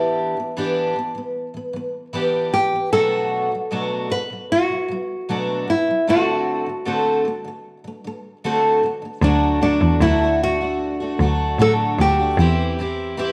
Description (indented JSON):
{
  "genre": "pop",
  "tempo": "76 BPM",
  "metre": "4/4",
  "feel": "straight",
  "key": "unclear",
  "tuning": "A4 = 440 Hz",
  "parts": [
    { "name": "nylon-string guitar", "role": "melody", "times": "0.0-13.3 s", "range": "D4 to B4", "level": "-23 LUFS", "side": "equal", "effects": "none" },
    { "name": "fingerpicked twelve-string acoustic guitar", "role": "accompaniment", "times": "0.0-13.3 s", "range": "B2 to A4", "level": "-24 LUFS", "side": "equal", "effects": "none" },
    { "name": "clear cello", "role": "bass", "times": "9.2-13.3 s", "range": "D2 to A2", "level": "-22 LUFS", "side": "equal", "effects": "none" }
  ],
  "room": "wet echo chamber reverb, RT60 1.3 s",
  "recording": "none",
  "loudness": "-20 LUFS",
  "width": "mono",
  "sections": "0.0-9.2 A section; 9.2-13.3 B section",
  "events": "none",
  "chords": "0.0 Em7; 2.9 Bm7; 6.1 D7; 9.2 D; 12.4 C/E",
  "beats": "0.56 1.34 2.13 | 2.92 3.71 4.50 5.29 | 6.08 6.86 7.65 8.44 | 9.23 10.02 10.81 11.60 | 12.39 13.18"
}